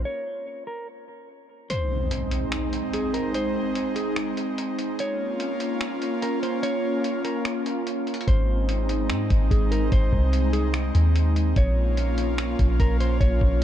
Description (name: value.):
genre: hip hop, atmospheric cloud-rap.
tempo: 146 BPM.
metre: 4/4.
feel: half-time.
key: unclear.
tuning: A4 = 442 Hz.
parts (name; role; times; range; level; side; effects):
mellow electric guitar; melody; 0.0-13.6 s; Ab4 to Db5; -32 LUFS; equal; low-pass filter, tape echo.
airy breathy pad; sustained chords; 0.0-13.6 s; Ab3 to F4; -27 LUFS; equal; chorus.
soft 808-style bass; bass; 0.0, 8.3-13.6 s; Ab1 to Ab2; -22 LUFS; equal; none.
lo-fi sampler-style drum kit; drums; 1.7-13.6 s; finger snaps, hi-hat, kick drum; -26 LUFS; equal; vintage 12-bit sampler grit.
impact; sound effects; 1.7-3.3 s; none; -30 LUFS; equal; none.
room: digital ambience.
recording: dark, warm production.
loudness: -22 LUFS.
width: side -11 dB against mid.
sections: 0.0-1.7 A section; 1.7-13.6 B section.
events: filter sweep 0.0-1.7; stop 0.1-1.7; kick muted 1.7-8.3; impact 1.7-3.3; break 7.5-8.3.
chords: 0.0 N.C.; 1.7 Ab; 5.0 Bbm; 8.3 Ab; 11.6 Bbm.